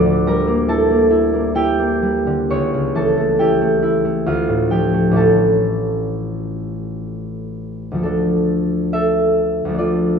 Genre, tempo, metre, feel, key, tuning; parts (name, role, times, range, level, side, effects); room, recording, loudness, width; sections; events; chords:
classical, solo harp piece; 62-73 BPM; 3/4; rubato; D minor; A4 = 442 Hz
concert harp; solo; 0.0-10.2 s; A1 to D6; -15 LUFS; equal
moderate recital hall reverb, RT60 1.6 s; minimal, uncompressed stereo recording; -15 LUFS; side -6 dB against mid
0.0-8.0 A section; 8.0-10.2 B section
0.0 Em7b5/D; 2.5 A7/C#; 4.3 Dm; 5.2 A; 8.0 Dm